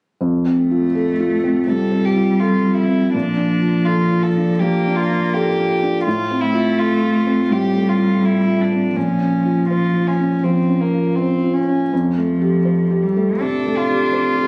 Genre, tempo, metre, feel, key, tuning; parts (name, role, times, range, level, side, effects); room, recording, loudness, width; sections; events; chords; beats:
neoclassical piano and strings; 82 BPM; 4/4; rubato; F major; A4 = 437 Hz
felt-muted upright piano; accompaniment; 0.2-14.5 s; F2 to C5; -21 LUFS; equal
warm cello; second line; 0.6-14.5 s; F3 to D4; -22 LUFS; equal
warm violin; melody; 1.7-14.5 s; Bb3 to A4; -25 LUFS; equal
light reverb; recorded on a phone in the room, studio reverb; -18 LUFS; mono
0.2-14.5 A section
0.2 Fadd9; 3.1 Bbmaj7; 6.1 Fadd9/A; 9.0 Bbmadd9; 11.9 Fadd9
| 0.22 0.95 1.68 2.41 | 3.14 3.87 4.61 5.33 | 6.05 6.78 7.50 8.23 | 8.96 9.70 10.44 11.18 | 11.92 12.66 13.41 14.14